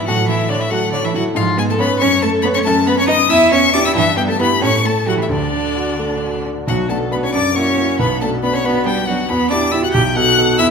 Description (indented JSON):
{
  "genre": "quick classical-period movement for piano quartet",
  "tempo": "92 BPM (dotted quarters)",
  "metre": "6/8",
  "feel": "straight",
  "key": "D major, B minor from 6.7 s",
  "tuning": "A4 = 440 Hz",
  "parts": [
    { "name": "clear violin", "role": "melody", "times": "0.0-10.7 s", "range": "D5 to G6", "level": "-19 LUFS", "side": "left 7 dB", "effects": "none" },
    { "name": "rich cello", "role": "second line", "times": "0.0-10.7 s", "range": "D3 to G4", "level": "-20 LUFS", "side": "right 6 dB", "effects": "none" },
    { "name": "warm violin", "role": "second line", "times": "0.0-10.7 s", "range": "D4 to G5", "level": "-21 LUFS", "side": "left 2 dB", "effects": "none" },
    { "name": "dark grand piano", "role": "accompaniment", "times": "0.0-10.7 s", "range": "B1 to C#5", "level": "-18 LUFS", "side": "left 1 dB", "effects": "none" }
  ],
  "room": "wet scoring stage reverb, RT60 1.6 s",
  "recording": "minimal, uncompressed stereo recording",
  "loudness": "-13 LUFS",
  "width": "side -6 dB against mid",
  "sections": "0.0-6.7 A section; 6.7-10.7 B section",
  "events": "none",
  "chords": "0.1 A; 1.4 C#5/G#; 2.0 F#m; 2.7 B/F#; 3.3 Em; 4.0 Em/G; 4.6 A5; 5.3 D; 6.7 Bm; 7.3 F#7; 8.0 Bm; 9.3 Em; 9.9 B7",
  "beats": "| 0.07 0.72 | 1.36 2.01 | 2.65 3.30 | 3.96 4.63 | 5.31 6.00 | 6.68 7.34 | 8.00 8.65 | 9.30 9.95 | 10.59"
}